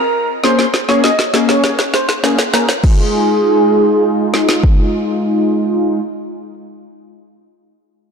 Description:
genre	dance-pop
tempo	100 BPM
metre	4/4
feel	straight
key	F minor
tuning	A4 = 443 Hz
part	airy dreamy lead	melody	0.0-4.6 s	Ab4 to Eb5	-16 LUFS	right 1 dB	chorus, sidechain pumping, low-pass filter, tape echo
part	big bright polysynth	accompaniment	0.4-6.0 s	Ab3 to Ab4	-16 LUFS	left 1 dB	chorus, sidechain pumping, low-pass filter
part	deep house drum kit	drums	0.4-4.8 s	crash cymbal, kick drum, snare drum	-15 LUFS	equal	none
room	moderate lush hall reverb, RT60 2.7 s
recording	dark, warm production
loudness	-11 LUFS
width	side -6 dB against mid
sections	0.0-2.8 A section; 2.8-5.2 B section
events	filter sweep 0.0-2.8; drum fill 0.4-2.8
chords	0.4 Bbm7; 2.8 Fm7

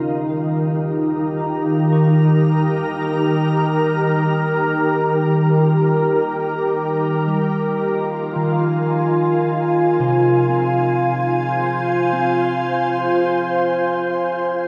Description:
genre	ambient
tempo	free time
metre	none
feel	none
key	unclear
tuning	A4 = 440 Hz
part	soft additive organ-like pad	sustained chords	0.0-14.7 s	Eb3 to Bb5	-19 LUFS	equal	ensemble chorus, built-in reverb, shimmer reverb
part	mellow electric guitar	arpeggios	0.0-14.7 s	C3 to Db6	-28 LUFS	equal	spring reverb, delay
room	wet concert hall reverb, RT60 2.2 s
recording	dark, warm production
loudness	-18 LUFS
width	mono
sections	0.0-14.7 A section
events	fade-in on clean electric guitar 0.0-14.7; filter sweep on ambient pad 0.0-14.7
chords	0.0 Dbadd9; 7.7 Fm

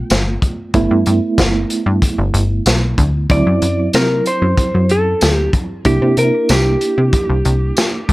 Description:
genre	straight-eighth soul blues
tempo	94 BPM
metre	4/4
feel	straight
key	unclear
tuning	A4 = 440 Hz
part	reed electric piano	accompaniment	0.0-8.1 s	F#3 to F4	-20 LUFS	right 3 dB	medium tremolo
part	plucky analog bass	bass	0.0-8.1 s	G1 to C3	-16 LUFS	equal	none
part	crunchy breakbeat drum kit	drums	0.1-8.1 s	hi-hat, kick drum, snare drum, tambourine	-17 LUFS	equal	none
part	clean lap steel guitar	melody	3.3-8.1 s	G4 to D5	-18 LUFS	equal	plate reverb
room	light reverb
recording	none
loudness	-12 LUFS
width	side -19 dB against mid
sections	0.0-8.1 A section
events	none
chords	0.0 G9; 3.3 D9; 5.9 C9

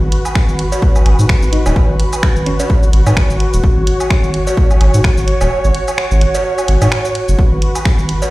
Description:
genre	minimal techno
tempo	128 BPM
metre	4/4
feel	swing 56% on 16ths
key	G# minor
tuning	A4 = 441 Hz
part	saturated sub bass	bass	0.0-8.1 s	D#1 to G#2	-13 LUFS	equal	sidechain pumping
part	muted chamber string section	texture	0.0-8.3 s	F#4 to C#5	-20 LUFS	equal	sidechain pumping
part	punchy analog drum machine	drums	0.1-8.3 s	finger snaps, hi-hat, shaker	-23 LUFS	right 1 dB	studio ambience
part	woodblock and cowbell	percussion	0.3-8.3 s	none	-23 LUFS	right 2 dB	studio ambience, dub echo
part	electronic kick drum	drums	0.4-8.0 s	none	-13 LUFS	equal	studio ambience
part	bell-like FM electric piano	melody	1.5-2.7 s	C#4 to D#4	-24 LUFS	equal	chorus, phaser, dub echo
room	light reverb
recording	played on a big sound system in a bare room, stone room reverb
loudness	-11 LUFS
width	side -19 dB against mid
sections	0.0-8.3 A section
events	kick drops out 5.5-7.4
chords	0.0 G#m7

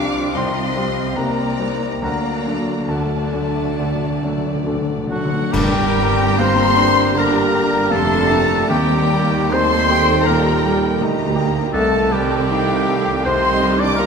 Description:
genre	classical, romantic movement for piano and orchestra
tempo	66-85 BPM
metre	4/4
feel	rubato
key	G minor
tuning	A4 = 440 Hz
part	warm grand piano	melody	0.0-14.1 s	C2 to Eb6	-22 LUFS	left 1 dB	none
part	warm studio violin section	melody	0.0-14.1 s	Eb5 to D6	-29 LUFS	left 2 dB	none
part	warm studio violin section	second line	0.0-14.1 s	D5 to D6	-24 LUFS	left 5 dB	none
part	warm symphonic viola section	accompaniment	0.0-14.1 s	Eb3 to Bb4	-25 LUFS	right 2 dB	none
part	dark French horn section	sustained chords	0.0-14.1 s	F#3 to D4	-24 LUFS	left 3 dB	none
part	warm studio cello section	bass	0.0-14.1 s	C2 to D4	-27 LUFS	right 4 dB	none
part	warm studio double bass section	bass	0.0-14.1 s	F1 to Eb2	-28 LUFS	right 5 dB	none
part	timpani	percussion	2.0-6.8 s	G2 to D3	-28 LUFS	left 1 dB	none
part	dark clarinet	second line	5.1-14.1 s	F#4 to D5	-25 LUFS	equal	none
part	hollow concert flute	second line	5.1-14.1 s	F#5 to D6	-26 LUFS	left 1 dB	none
part	warm oboe	second line	5.1-14.1 s	F#4 to D5	-23 LUFS	right 2 dB	none
part	dark trombone section	sustained chords	5.5-14.1 s	D3 to A3	-28 LUFS	right 7 dB	none
part	dark tuba	bass	5.5-14.1 s	F1 to Eb2	-26 LUFS	right 5 dB	none
part	clash cymbals and concert bass drum	percussion	5.5-7.1 s	none	-26 LUFS	right 1 dB	none
room	moderate concert hall reverb, RT60 2.0 s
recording	minimal, uncompressed stereo recording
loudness	-15 LUFS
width	side -6 dB against mid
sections	0.0-5.5 A section; 5.5-14.1 B section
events	timpani fill 2.0-5.5; band accent 5.5-6.4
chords	0.0 Cm; 2.0 D; 5.5 Gm; 8.7 Eb; 11.8 Am7b5/C

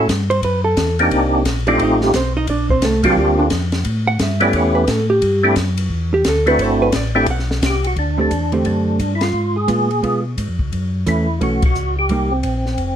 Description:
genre	soul jazz organ trio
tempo	175 BPM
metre	4/4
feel	swing 63% on 8ths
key	D mixolydian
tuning	A4 = 440 Hz
part	percussive tonewheel organ	melody	0.0-13.0 s	A3 to G#4	-18 LUFS	equal	slow rotary speaker, chorus vibrato
part	mellow tonewheel organ	bass	0.0-13.0 s	F1 to B2	-20 LUFS	left 1 dB	chorus vibrato, slow rotary speaker
part	compact cocktail drum kit	drums	0.1-12.9 s	hi-hat, kick drum, ride cymbal, snare drum	-24 LUFS	left 1 dB	none
part	hollow-body jazz guitar	accompaniment	0.3-12.3 s	D3 to F#5	-19 LUFS	right 2 dB	none
room	moderate studio reverb, RT60 0.7 s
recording	none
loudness	-15 LUFS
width	side -9 dB against mid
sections	0.0-8.0 A section; 8.0-13.0 B section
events	hollow-body jazz guitar solo 0.0-8.0; band accent 9.2, 11.6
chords	0.0 F#m7; 1.1 Cm7; 1.8 F7; 2.5 Bb6; 3.9 A7; 5.2 D7sus4; 9.3 C#7; 10.7 F#m7; 12.1 Cm7

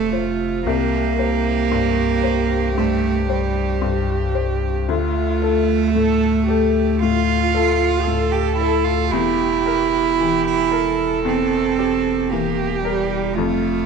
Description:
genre	neoclassical piano and strings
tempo	57 BPM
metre	4/4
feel	rubato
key	unclear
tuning	A4 = 440 Hz
part	clear cello	second line	0.0-13.9 s	G3 to G4	-20 LUFS	right 8 dB	none
part	felt-muted upright piano	accompaniment	0.0-13.9 s	C2 to C5	-23 LUFS	left 13 dB	none
part	warm viola	accompaniment	0.0-13.9 s	F4 to A4	-24 LUFS	right 7 dB	none
part	saturated sub bass	bass	0.0-13.9 s	E1 to D2	-25 LUFS	left 3 dB	none
room	light reverb, small room ambience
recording	1960s-style stereo with parts hard left and right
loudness	-17 LUFS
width	side -6 dB against mid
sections	0.0-13.9 A section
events	none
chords	0.0 F; 0.7 C5; 4.9 Dm; 9.1 C7/E

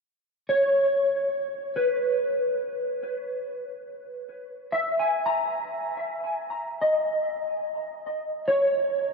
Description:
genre	ambient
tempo	72 BPM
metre	4/4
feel	straight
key	unclear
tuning	A4 = 440 Hz
part	mellow electric guitar	solo	0.5-9.1 s	B4 to A#5	-24 LUFS	equal	ensemble chorus, tape echo
room	wet cathedral reverb, RT60 6.3 s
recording	in a vast, echoing space, cassette tape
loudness	-24 LUFS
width	side -4 dB against mid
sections	0.5-9.1 A section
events	none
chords	0.5 Bmaj13

